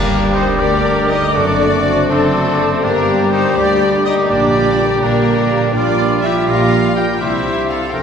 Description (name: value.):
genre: classical.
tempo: 82 BPM (dotted quarters).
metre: 6/8.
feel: rubato.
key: G minor.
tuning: A4 = 441 Hz.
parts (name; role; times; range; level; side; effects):
warm symphonic violin section; melody; 0.0-8.0 s; A3 to G4; -23 LUFS; left 4 dB; none.
clear oboe; second line; 0.0-8.0 s; C4 to Bb4; -22 LUFS; equal; none.
small flute group; second line; 0.0-8.0 s; C6 to D6; -23 LUFS; equal; none.
warm symphonic violin section; second line; 0.0-8.0 s; A4 to G5; -21 LUFS; left 3 dB; none.
mellow bassoon; accompaniment; 0.0-8.0 s; G3 to A3; -22 LUFS; equal; none.
rich studio viola section; accompaniment; 0.0-8.0 s; C4 to Bb4; -23 LUFS; right 1 dB; none.
mellow French horn section; sustained chords; 0.0-8.0 s; C4 to Bb4; -22 LUFS; left 2 dB; none.
mellow trombone section; sustained chords; 0.0-8.0 s; C3 to C4; -24 LUFS; right 4 dB; none.
concert harp; arpeggios; 0.0-8.0 s; F#2 to A5; -23 LUFS; left 5 dB; none.
dark symphonic cello section; bass; 0.0-8.0 s; D2 to C3; -22 LUFS; right 3 dB; none.
warm symphonic double bass section; bass; 0.0-8.0 s; F1 to D2; -23 LUFS; right 4 dB; none.
room: wet scoring stage reverb, RT60 2.0 s.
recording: heard from further back in the room.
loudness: -12 LUFS.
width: side -7 dB against mid.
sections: 0.0-8.0 A section.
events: none.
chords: 0.0 Gm; 1.3 D7/F#; 2.8 Gm; 4.3 Gm/Bb; 7.2 C.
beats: 0.59 | 1.34 2.09 | 2.83 3.56 | 4.29 5.02 | 5.74 6.48 | 7.20 7.93.